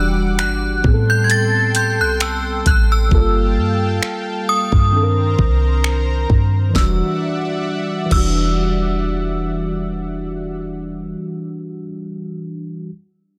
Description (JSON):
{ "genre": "contemporary R&B", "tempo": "66 BPM", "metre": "4/4", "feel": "swing 54% on 16ths", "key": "E minor", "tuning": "A4 = 440 Hz", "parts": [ { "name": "synth chime", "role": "melody", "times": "0.0-11.8 s", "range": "D#6 to A6", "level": "-24 LUFS", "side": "equal", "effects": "ensemble chorus" }, { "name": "mellow tine electric piano", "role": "accompaniment", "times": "0.0-12.9 s", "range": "Eb3 to Bb4", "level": "-25 LUFS", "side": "equal", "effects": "phaser" }, { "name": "lush unison pad", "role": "sustained chords", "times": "0.0-10.6 s", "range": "G3 to D6", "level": "-30 LUFS", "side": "equal", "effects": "chorus, sidechain pumping" }, { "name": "clean 808-style bass", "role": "bass", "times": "0.0-11.1 s", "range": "E1 to A2", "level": "-21 LUFS", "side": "equal", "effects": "none" }, { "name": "smooth R&B drum kit", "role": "drums", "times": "0.4-8.4 s", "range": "crash cymbal, finger snaps, hi-hat, kick drum, snare drum", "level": "-20 LUFS", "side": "equal", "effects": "none" } ], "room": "little or no reverb", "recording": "none", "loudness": "-18 LUFS", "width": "mono", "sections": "0.0-6.8 A section; 6.8-10.4 B section", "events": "none", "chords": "0.0 Em9; 0.8 Am9; 3.1 Gm9; 4.9 Cm9; 6.8 Em9", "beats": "0.39 1.29 2.20 | 3.11 4.02 4.93 5.84 | 6.75 7.66 8.57 9.48" }